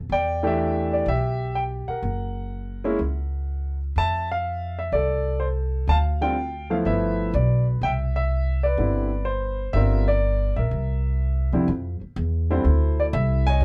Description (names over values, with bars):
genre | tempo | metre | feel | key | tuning
jazz piano trio | 124 BPM | 4/4 | swing 69% on 8ths | C major | A4 = 440 Hz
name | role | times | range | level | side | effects
upright bass | bass | 0.0-13.6 s | F#1 to C3 | -26 LUFS | equal | none
warm concert grand piano | melody | 0.1-13.6 s | F2 to A5 | -27 LUFS | equal | none
room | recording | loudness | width
moderate small room reverb, RT60 0.5 s | band playing live in one room | -24 LUFS | mono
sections
0.0-11.7 A section; 11.7-13.6 B section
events
none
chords
0.1 Em7; 2.0 F#; 4.0 Fmaj7; 5.9 Dm; 6.8 G9; 7.8 Cmaj7; 9.7 Gm7; 10.7 C7; 11.7 Fmaj7